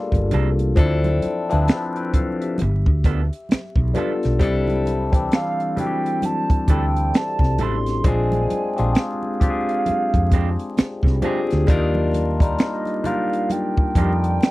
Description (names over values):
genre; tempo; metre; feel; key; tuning
R&B, neo-soul; 66 BPM; 4/4; swing 60% on 16ths; unclear; A4 = 440 Hz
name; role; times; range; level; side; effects
barky tine electric piano; accompaniment; 0.0-14.5 s; E3 to A5; -23 LUFS; left 3 dB; overdrive, phaser
woody fretless electric bass; bass; 0.1-14.4 s; G1 to F2; -20 LUFS; equal; lush chorus
compact cocktail drum kit; drums; 0.1-14.5 s; finger snaps, hi-hat, kick drum, snare drum; -19 LUFS; equal; none
congas; percussion; 0.1-14.5 s; none; -31 LUFS; right 3 dB; none
electric guitar through a small old amp; second line; 0.3-14.1 s; F3 to A4; -28 LUFS; right 7 dB; none
hollow clarinet-like synth lead; melody; 5.3-14.5 s; Eb5 to C6; -25 LUFS; right 3 dB; chorus, slapback echo
room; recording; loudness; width
little or no reverb; dry, close 1970s-style studio recording, vinyl crackle; -18 LUFS; side -18 dB against mid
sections
0.0-14.5 A section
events
none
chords
0.0 Gm9; 0.8 Dm9; 2.6 G9; 4.4 C69; 8.0 Bb13; 11.7 Ebmaj7